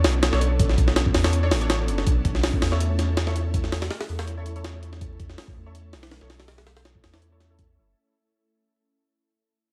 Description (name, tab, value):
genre	drum and bass, jungle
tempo	163 BPM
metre	4/4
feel	swing 53% on 16ths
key	unclear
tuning	A4 = 442 Hz
part	ethereal airy pad	sustained chords	0.0-7.9 s	A3 to A4	-36 LUFS	equal	ensemble chorus, built-in reverb
part	soft dub sub bass	bass	0.0-7.9 s	F#1 to E2	-27 LUFS	equal	tube saturation
part	jungle sampler-style drum kit	drums	0.0-7.7 s	hi-hat, kick drum, snare drum	-26 LUFS	equal	none
part	orchestra-hit-like synth stab	stabs	0.3-7.6 s	D4 to C#5	-36 LUFS	equal	built-in reverb, phaser, dub echo
room	little or no reverb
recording	vinyl crackle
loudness	-23 LUFS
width	mono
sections	0.0-8.0 A section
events	fade-out 0.0-8.0; filter sweep on synth stab 0.0-8.0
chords	0.0 Bm9; 2.1 A/B